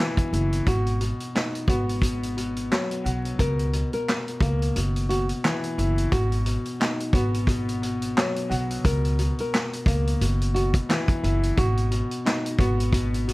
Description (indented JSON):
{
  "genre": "hip hop, boom-bap hip-hop",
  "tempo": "88 BPM",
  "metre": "4/4",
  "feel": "swing 58% on 16ths",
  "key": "G# minor",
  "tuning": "A4 = 441 Hz",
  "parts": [
    { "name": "warm upright piano", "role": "accompaniment", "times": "0.0-13.3 s", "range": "B2 to F#4", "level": "-28 LUFS", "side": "left 2 dB", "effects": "high-pass filter, low-pass filter" },
    { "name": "vintage drum kit", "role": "drums", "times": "0.0-13.3 s", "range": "handclaps, hi-hat, kick drum, snare drum", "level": "-25 LUFS", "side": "equal", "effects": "none" },
    { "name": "upright bass", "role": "bass", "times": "0.3-13.3 s", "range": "F#1 to C#2", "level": "-25 LUFS", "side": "equal", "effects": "none" },
    { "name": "nylon-string guitar", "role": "melody", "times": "0.7-13.1 s", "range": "D#4 to A#4", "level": "-30 LUFS", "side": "right 1 dB", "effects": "high-pass filter, low-pass filter, tape echo" }
  ],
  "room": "little or no reverb",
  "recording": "vinyl crackle",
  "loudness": "-22 LUFS",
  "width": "side -20 dB against mid",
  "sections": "0.0-6.1 A section; 6.1-13.3 B section",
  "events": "kick muted 4.8-6.1",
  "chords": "0.0 F#7sus4; 0.7 G#m7; 3.4 Bsus2/C#; 4.8 F#7sus4; 6.1 G#m7; 8.8 Bsus2/C#; 10.2 F#7sus4; 11.6 G#m7"
}